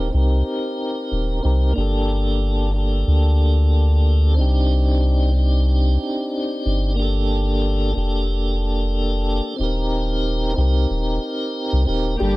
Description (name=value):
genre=trip hop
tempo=92 BPM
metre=4/4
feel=straight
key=unclear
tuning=A4 = 440 Hz
part: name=tonewheel organ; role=accompaniment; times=0.0-12.4 s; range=Bb3 to Bb4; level=-23 LUFS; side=equal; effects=slow rotary speaker, tremolo, low-pass filter, tape echo
part: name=soft dub sub bass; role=bass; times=0.0-12.4 s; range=Eb1 to D2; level=-18 LUFS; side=equal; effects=none
part: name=clear symphonic string section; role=sustained chords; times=12.2-12.4 s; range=G3 to G4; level=-23 LUFS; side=equal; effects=none
part: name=music box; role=arpeggios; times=12.2-12.3 s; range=G4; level=-24 LUFS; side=left 3 dB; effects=none
room=small room ambience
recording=dark, warm production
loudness=-17 LUFS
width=side -20 dB against mid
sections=0.0-12.4 A section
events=none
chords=0.0 Eb6; 1.8 Gmadd9; 4.4 Cmadd9; 7.0 Gmadd9; 9.6 Eb6